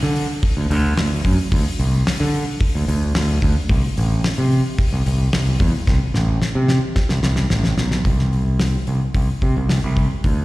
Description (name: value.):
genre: classic rock.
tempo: 110 BPM.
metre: 4/4.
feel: straight.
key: D mixolydian.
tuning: A4 = 440 Hz.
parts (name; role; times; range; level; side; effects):
growling fingered electric bass; bass; 0.0-10.4 s; A1 to D3; -18 LUFS; equal; overdrive.
damped 70s drum kit; drums; 0.0-10.4 s; hi-hat, kick drum, snare drum; -21 LUFS; equal; none.
room: little or no reverb.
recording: live gig heard through the venue's PA, recital hall reverb.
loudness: -16 LUFS.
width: side -19 dB against mid.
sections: 0.0-8.1 A section; 8.1-10.4 B section.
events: drum fill 5.9-8.1.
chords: none.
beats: 0.43 0.97 | 1.52 2.06 2.60 3.15 | 3.69 4.24 4.78 5.33 | 5.87 6.42 6.96 7.51 | 8.05 8.60 9.15 9.69 | 10.24.